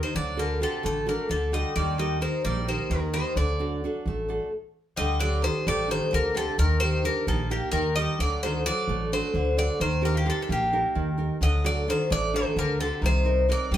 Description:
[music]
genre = greek folk, Greek bouzouki band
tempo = 261 BPM (eighths)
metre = 7/8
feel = straight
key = D phrygian dominant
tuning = A4 = 437 Hz
[part]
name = Greek bouzouki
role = melody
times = 0.0-13.8 s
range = G4 to Eb5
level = -28 LUFS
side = left 1 dB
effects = none
[part]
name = Greek bouzouki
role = second line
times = 0.0-13.8 s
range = C3 to Bb3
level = -34 LUFS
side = left 2 dB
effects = none
[part]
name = nylon-string guitar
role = accompaniment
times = 0.0-13.8 s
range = C3 to Bb4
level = -30 LUFS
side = right 2 dB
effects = none
[part]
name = upright bass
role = bass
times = 0.1-13.8 s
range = A1 to G2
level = -27 LUFS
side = equal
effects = none
[sound]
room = wet studio reverb, RT60 0.6 s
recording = band playing live in one room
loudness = -23 LUFS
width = side -11 dB against mid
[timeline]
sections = 0.0-5.0 A section; 5.0-13.8 B section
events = stop 4.5-5.0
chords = 0.1 D; 1.8 Eb; 3.4 D; 5.0 Dsus4; 6.6 Eb; 8.2 D; 9.8 Eb; 11.4 D; 13.0 Cm7

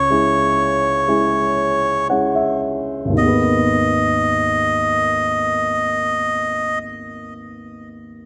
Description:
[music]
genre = pop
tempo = 55-64 BPM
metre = 4/4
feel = straight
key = G# minor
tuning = A4 = 440 Hz
[part]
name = melodica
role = melody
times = 0.0-6.8 s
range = C#5 to D#5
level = -20 LUFS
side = equal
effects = none
[part]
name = warm baby grand piano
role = accompaniment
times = 0.0-8.3 s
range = G#1 to F#5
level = -23 LUFS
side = equal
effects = none
[sound]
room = moderate scoring stage reverb, RT60 1.9 s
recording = none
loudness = -18 LUFS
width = mono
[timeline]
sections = 0.0-3.2 A section; 3.2-7.5 B section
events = slowing down 0.0-3.2; grand piano fill 1.6-3.2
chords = 0.0 C#m; 3.2 G#m

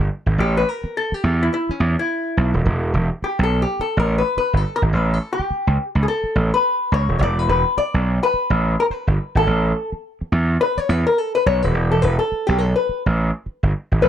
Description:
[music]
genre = funk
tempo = 106 BPM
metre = 4/4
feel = swing 60% on 16ths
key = E dorian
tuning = A4 = 442 Hz
[part]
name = gritty slap bass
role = bass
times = 0.0-14.1 s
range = D#1 to E2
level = -18 LUFS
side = right 1 dB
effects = overdrive
[part]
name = hollow-body jazz guitar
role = accompaniment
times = 0.4-14.1 s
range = C#4 to D5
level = -20 LUFS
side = left 3 dB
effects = wah
[sound]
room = digital ambience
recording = dark, warm production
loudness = -17 LUFS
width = side -10 dB against mid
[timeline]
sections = 0.0-14.1 A section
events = hollow-body jazz guitar solo 0.0-14.1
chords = 0.4 A5; 2.7 Em; 4.9 A7; 7.2 E5; 9.5 Asus2; 11.8 E5

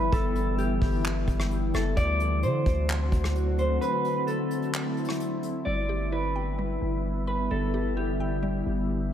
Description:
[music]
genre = hip hop, atmospheric cloud-rap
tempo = 130 BPM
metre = 4/4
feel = half-time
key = G major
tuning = A4 = 439 Hz
[part]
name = mellow electric guitar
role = melody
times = 0.0-9.1 s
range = G4 to D5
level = -31 LUFS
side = right 1 dB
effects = analog delay
[part]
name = glassy FM pad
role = sustained chords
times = 0.0-9.1 s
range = D3 to F#4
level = -30 LUFS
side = left 1 dB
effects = ensemble chorus, built-in reverb, sidechain pumping
[part]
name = long sustained 808-style bass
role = bass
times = 0.0-9.1 s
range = F#1 to D3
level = -28 LUFS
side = equal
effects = none
[part]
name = soft brush drum kit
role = drums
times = 0.1-5.5 s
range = handclaps, hi-hat, kick drum, rim click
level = -30 LUFS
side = equal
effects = none
[part]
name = mallet-like synth pluck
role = arpeggios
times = 5.7-9.1 s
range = G3 to B5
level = -37 LUFS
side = equal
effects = chorus, phaser, analog delay
[sound]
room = moderate lush hall reverb, RT60 1.6 s, small room ambience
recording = dreamy mix soaked in reverb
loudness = -25 LUFS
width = side -10 dB against mid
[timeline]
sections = 0.0-5.7 A section; 5.7-9.1 B section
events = break 3.8-5.7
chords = 0.0 G6; 2.0 D7; 5.7 G6

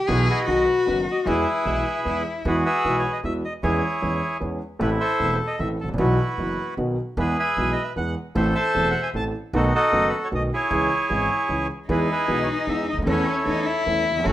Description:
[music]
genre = tango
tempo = 153 BPM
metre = 3/4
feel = rubato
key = E major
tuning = A4 = 438 Hz
[part]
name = warm cello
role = second line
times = 0.0-2.4, 11.9-14.3 s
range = C#4 to G#4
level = -24 LUFS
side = left 3 dB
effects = none
[part]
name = bandoneon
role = melody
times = 0.1-14.3 s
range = C#4 to A5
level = -24 LUFS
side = right 1 dB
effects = slapback echo
[part]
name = warm concert grand piano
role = accompaniment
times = 0.1-14.3 s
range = E1 to A4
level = -25 LUFS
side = right 1 dB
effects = plate reverb
[part]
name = upright bass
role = bass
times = 0.1-14.3 s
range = E1 to E2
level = -28 LUFS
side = right 1 dB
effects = none
[sound]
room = wet studio reverb, RT60 0.6 s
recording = rough home demo mix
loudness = -20 LUFS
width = side -13 dB against mid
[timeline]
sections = 0.0-2.5 A section; 2.5-14.3 A section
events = none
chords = 0.1 Bsus4; 0.5 B; 1.3 E; 2.5 Eadd9; 3.6 C#m/E; 4.8 Am; 6.0 Bsus4; 6.8 B; 7.2 E; 8.4 Am; 9.5 B7; 10.7 C#m; 11.9 E; 13.1 A/E

